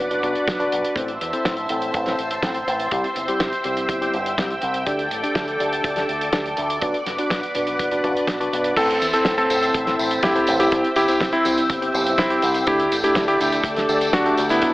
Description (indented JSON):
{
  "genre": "italo disco",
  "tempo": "123 BPM",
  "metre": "4/4",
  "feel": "straight",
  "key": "A dorian",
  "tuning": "A4 = 440 Hz",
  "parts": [
    { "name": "string machine, full ensemble", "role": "sustained chords", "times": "0.0-14.7 s", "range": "A4 to E6", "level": "-24 LUFS", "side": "equal", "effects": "ensemble chorus" },
    { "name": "tine electric piano", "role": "stabs", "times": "0.0-14.7 s", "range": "G3 to D5", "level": "-25 LUFS", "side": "left 1 dB", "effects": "medium stereo tremolo" },
    { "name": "fingered electric bass with an envelope filter", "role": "bass", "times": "0.0-14.7 s", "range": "F#1 to E2", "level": "-29 LUFS", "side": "equal", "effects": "tape echo" },
    { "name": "damped 70s drum kit", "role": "drums", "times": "0.1-14.7 s", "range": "crash cymbal, hi-hat, snare drum, tambourine", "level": "-27 LUFS", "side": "equal", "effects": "none" },
    { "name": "kick drum", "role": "drums", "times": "0.2-14.7 s", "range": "none", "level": "-25 LUFS", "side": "equal", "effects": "none" },
    { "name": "clear electric grand piano", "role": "melody", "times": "8.8-14.7 s", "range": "B3 to A4", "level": "-20 LUFS", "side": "equal", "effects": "tape echo" }
  ],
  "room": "moderate lush hall reverb, RT60 2.2 s",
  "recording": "AM radio sound",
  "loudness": "-18 LUFS",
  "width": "side -18 dB against mid",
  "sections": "0.0-8.8 A section; 8.8-14.7 B section",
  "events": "none",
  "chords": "0.0 Bm; 1.0 Am; 2.9 C; 4.9 Dsus4; 6.8 Bm; 8.8 Am; 10.7 C; 12.7 Dsus4"
}